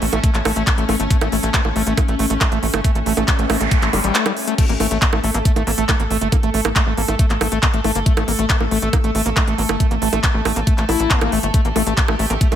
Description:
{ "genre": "psychedelic trance", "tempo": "138 BPM", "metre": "4/4", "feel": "straight", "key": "A major", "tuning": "A4 = 440 Hz", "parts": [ { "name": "evolving wavetable pad", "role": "sustained chords", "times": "0.0-12.6 s", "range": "A3 to A4", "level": "-25 LUFS", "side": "left 1 dB", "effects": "chorus, built-in reverb, sidechain pumping" }, { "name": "screaming distorted acid line", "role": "riff", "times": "0.0-12.6 s", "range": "G3 to E4", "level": "-22 LUFS", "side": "moving between left 10 dB and right 9 dB", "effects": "distortion, chorus, auto-pan, sidechain pumping, tape echo" }, { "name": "tight sequencer bass", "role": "bass", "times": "0.0-12.6 s", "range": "G1 to A1", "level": "-22 LUFS", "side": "equal", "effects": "none" }, { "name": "drum and bass drum kit", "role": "drums", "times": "0.0-12.6 s", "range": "bongos, crash cymbal, handclaps, hi-hat", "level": "-21 LUFS", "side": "right 2 dB", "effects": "none" }, { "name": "electronic kick drum", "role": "drums", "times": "0.2-12.5 s", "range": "none", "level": "-17 LUFS", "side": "equal", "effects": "none" }, { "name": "noise sweep", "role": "sound effects", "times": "3.2-4.6 s", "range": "none", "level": "-25 LUFS", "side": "right 1 dB", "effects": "none" }, { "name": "resonant blip pluck", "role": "second line", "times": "5.3-6.3, 12.3-12.5 s", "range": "A3", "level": "-33 LUFS", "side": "right 1 dB", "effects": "none" } ], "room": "little or no reverb", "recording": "none", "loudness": "-15 LUFS", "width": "side -10 dB against mid", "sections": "0.0-12.6 A section", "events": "noise sweep 3.2-4.6", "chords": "0.0 A5", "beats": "0.24 0.67 | 1.10 1.54 1.98 2.41 | 2.84 3.28 3.71 4.15 | 4.58 5.02 5.45 5.89 | 6.32 6.76 7.19 7.63 | 8.06 8.50 8.93 9.37 | 9.80 10.24 10.67 11.11 | 11.54 11.97 12.41" }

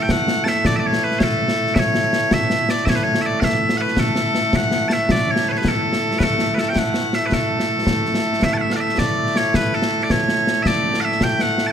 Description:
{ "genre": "scottish traditional, Scottish pipe music", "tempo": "108 BPM (dotted quarters)", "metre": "6/8", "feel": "straight", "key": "A major", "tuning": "A4 = 440 Hz", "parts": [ { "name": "loud bright bagpipes", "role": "melody", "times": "0.0-11.7 s", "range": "A2 to A5", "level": "-18 LUFS", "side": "equal", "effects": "none" }, { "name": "concert snare drum and concert bass drum", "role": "drums", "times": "0.1-11.7 s", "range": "none", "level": "-21 LUFS", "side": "left 1 dB", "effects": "none" } ], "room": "moderate concert hall reverb, RT60 2.2 s", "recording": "none", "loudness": "-16 LUFS", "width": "side -8 dB against mid", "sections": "0.0-8.4 A section; 8.4-11.7 B section", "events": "none", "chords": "none", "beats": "0.09 | 0.65 1.20 | 1.76 2.31 | 2.87 3.43 | 3.98 4.54 | 5.09 5.65 | 6.20 6.76 | 7.32 7.87 | 8.43 8.98 | 9.54 10.09 | 10.65 11.20" }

